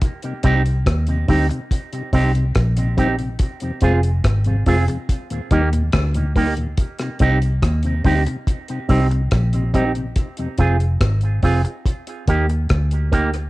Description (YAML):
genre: dub reggae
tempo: 71 BPM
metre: 4/4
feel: straight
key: C minor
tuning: A4 = 439 Hz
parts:
  - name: deep reggae drum kit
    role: drums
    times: 0.0-13.5 s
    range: hi-hat, kick drum, rim click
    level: -20 LUFS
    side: equal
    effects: cassette tape
  - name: mellow tonewheel organ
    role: accompaniment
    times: 0.2-10.5 s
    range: Eb2 to F4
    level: -27 LUFS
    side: left 2 dB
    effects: dub echo
  - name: electric guitar with an envelope filter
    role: accompaniment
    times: 0.4-13.3 s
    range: Bb3 to Ab4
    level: -24 LUFS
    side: right 3 dB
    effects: dub echo, plate reverb
  - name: vintage muted fingered electric bass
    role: bass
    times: 0.4-13.5 s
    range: F1 to Eb2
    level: -18 LUFS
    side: equal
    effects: tube saturation
room: light reverb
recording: home recording on cassette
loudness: -16 LUFS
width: side -19 dB against mid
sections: 0.0-13.5 A section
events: none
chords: 0.0 Cm; 3.4 Fm; 5.1 Eb; 6.8 Cm; 10.2 Fm; 11.9 Eb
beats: | 0.01 0.86 1.71 2.55 | 3.40 4.24 5.09 5.93 | 6.78 7.62 8.47 9.31 | 10.16 11.01 11.85 12.70